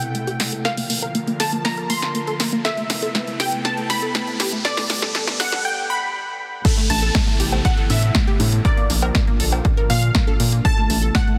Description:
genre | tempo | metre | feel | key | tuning
progressive house | 120 BPM | 4/4 | straight | unclear | A4 = 440 Hz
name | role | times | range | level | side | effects
unison pluck | melody | 0.0-11.4 s | D5 to C6 | -28 LUFS | equal | phaser, cassette tape, tape echo
airy breathy pad | sustained chords | 0.0-11.4 s | Bb2 to B4 | -32 LUFS | equal | chorus, vintage 12-bit sampler grit, sidechain pumping
house drum kit | drums | 0.0-11.4 s | crash cymbal, hi-hat, snare drum | -27 LUFS | equal | high-pass filter on snare, sidechain pumping on hats, high-pass filter on hats, sidechain pumping on cymbals, high-pass filter on cymbals
riser and downlifter | sound effects | 1.4-10.6 s | none | -33 LUFS | equal | none
unison pluck | arpeggios | 0.1-11.3 s | A3 to Bb4 | -29 LUFS | equal | sidechain pumping, tape echo
electronic kick drum | drums | 6.6-11.2 s | none | -21 LUFS | equal | none
congas and cowbell | percussion | 6.6-11.0 s | none | -32 LUFS | equal | sidechain pumping on perc
round analog bass | bass | 6.9-11.1 s | A1 to Bb2 | -22 LUFS | equal | sidechain pumping
room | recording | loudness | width
light reverb | dense, heavily limited modern master, high-pass filter | -20 LUFS | mono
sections
0.0-6.6 A section; 6.6-11.4 B section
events
build-up 0.0-6.6; drum fill 0.0-5.6; filter sweep on synth pluck 0.0-6.6; riser 1.4-5.6; break 5.6-6.6; drop 6.6-11.4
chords
0.0 Amadd9; 0.6 Bb; 2.6 Amadd9; 4.6 G; 6.6 Amadd9; 8.6 Bb; 10.6 Amadd9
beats
0.15 | 0.65 1.15 1.65 2.15 | 2.65 3.15 3.65 4.15 | 4.65 5.15 5.65 6.15 | 6.65 7.15 7.65 8.15 | 8.65 9.15 9.65 10.15 | 10.65 11.15

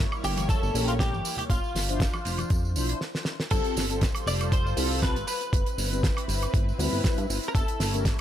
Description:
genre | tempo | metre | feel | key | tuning
nu-disco, nu disco | 119 BPM | 4/4 | swing 54% on 16ths | G mixolydian | A4 = 440 Hz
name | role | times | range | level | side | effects
lush unison pad | sustained chords | 0.0-8.2 s | G3 to C#5 | -36 LUFS | equal | chorus, phaser, sidechain pumping
chorused synth bass | bass | 0.0-8.1 s | F1 to G2 | -29 LUFS | equal | none
damped 70s drum kit | drums | 0.1-8.2 s | crash cymbal, hi-hat, snare drum, tambourine, woodblock | -31 LUFS | right 2 dB | none
direct-recorded clean electric guitar | melody | 0.2-8.0 s | F4 to D5 | -33 LUFS | left 1 dB | ensemble chorus, ping-pong delay
congas | percussion | 0.4-2.7 s | none | -38 LUFS | left 3 dB | none
electronic kick drum | drums | 0.5-8.2 s | none | -26 LUFS | equal | none
mellow synth brass | accompaniment | 0.7-8.0 s | F3 to C5 | -33 LUFS | left 2 dB | chorus, cassette tape, ping-pong delay
room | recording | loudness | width
small room ambience | none | -24 LUFS | side -11 dB against mid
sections
0.0-3.5 A section; 3.5-8.2 B section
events
drum fill 3.0-3.5; stop 3.0-3.5; drop 3.5-8.2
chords
0.0 A7b9/G; 1.5 Dm9; 3.5 G9sus4; 5.3 Cmaj7/G; 7.5 A7b9/G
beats
0.49 0.99 | 1.50 2.00 2.50 3.01 | 3.51 4.02 4.52 5.03 | 5.53 6.03 6.54 7.04 | 7.55 8.05

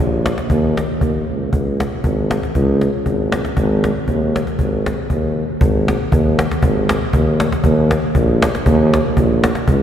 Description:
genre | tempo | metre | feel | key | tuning
alpine folk, alpine dance band | 118 BPM | 2/4 | straight | unclear | A4 = 440 Hz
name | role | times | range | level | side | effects
warm tuba | bass | 0.0-9.8 s | G#1 to D#2 | -16 LUFS | equal | none
cajon | drums | 0.3-9.8 s | none | -18 LUFS | equal | none
room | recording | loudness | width
wet cathedral reverb, RT60 4.1 s | recorded in a church or concert hall | -14 LUFS | side -10 dB against mid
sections
0.0-5.6 A section; 5.6-9.8 A section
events
break 1.3, 5.4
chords
none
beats
| 0.50 1.01 | 1.53 2.04 | 2.55 3.05 | 3.56 4.07 | 4.58 5.09 | 5.61 6.12 | 6.63 7.13 | 7.64 8.15 | 8.66 9.16 | 9.68

